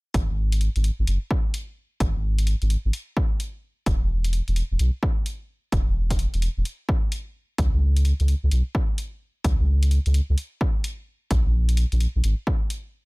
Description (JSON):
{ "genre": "UK garage, two-step garage", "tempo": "129 BPM", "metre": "4/4", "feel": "swing 64% on 16ths", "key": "unclear", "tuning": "A4 = 440 Hz", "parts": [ { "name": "soft dub sub bass", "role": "bass", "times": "0.1-12.3 s", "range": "E1 to C#2", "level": "-20 LUFS", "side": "equal", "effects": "tube saturation, sidechain pumping" }, { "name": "electronic hi-hat", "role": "drums", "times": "0.1-12.8 s", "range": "none", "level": "-35 LUFS", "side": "left 1 dB", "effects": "none" }, { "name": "electronic kick drum", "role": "drums", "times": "0.1-12.6 s", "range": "none", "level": "-23 LUFS", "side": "equal", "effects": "none" } ], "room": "little or no reverb", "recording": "none", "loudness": "-21 LUFS", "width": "side -28 dB against mid", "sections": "0.1-13.1 A section", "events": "none", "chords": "none", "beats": "| 0.14 0.61 1.07 1.54 | 2.00 2.47 2.93 3.40 | 3.86 4.33 4.79 5.26 | 5.72 6.19 6.66 7.12 | 7.58 8.05 8.52 8.98 | 9.45 9.91 10.38 10.84 | 11.31 11.77 12.24 12.70" }